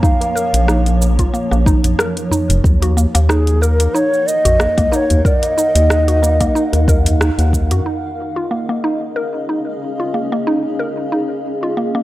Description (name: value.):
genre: organic downtempo.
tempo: 92 BPM.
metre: 4/4.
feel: swing 55% on 16ths.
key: Eb minor.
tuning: A4 = 438 Hz.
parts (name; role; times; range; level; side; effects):
mellow hollow bansuri; melody; 0.0-7.2 s; Ab4 to F5; -18 LUFS; equal; analog delay.
granular cloud pad; sustained chords; 0.0-12.0 s; F3 to Gb5; -23 LUFS; equal; built-in reverb, vintage 12-bit sampler grit, sidechain pumping.
mallet-like synth pluck; arpeggios; 0.0-12.0 s; Bb3 to Bb4; -21 LUFS; equal; chorus, analog delay.
afro-pop drum kit; drums; 0.0-12.0 s; crash cymbal, hi-hat, rim click, shaker; -22 LUFS; right 1 dB; low-pass filter on perc, low-pass filter on snare, low-pass filter on hats, low-pass filter on cymbals.
electronic kick drum; drums; 0.0-7.7 s; none; -15 LUFS; equal; none.
tabla; percussion; 0.2-7.8 s; none; -25 LUFS; left 1 dB; none.
round analog bass; bass; 0.5-7.8 s; F1 to Gb2; -14 LUFS; equal; sidechain pumping.
room: light reverb, digital ambience.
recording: dry, gritty hardware recording.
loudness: -13 LUFS.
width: side -16 dB against mid.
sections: 0.0-7.9 A section; 7.9-12.0 B section.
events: band accent 7.2-7.5.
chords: 0.0 Bbm; 2.6 Ebmadd9; 7.9 Db.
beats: | 0.03 0.69 1.34 1.99 | 2.64 3.29 3.95 4.60 | 5.25 5.90 6.55 7.21 | 7.86 8.51 9.16 9.81 | 10.47 11.12 11.77.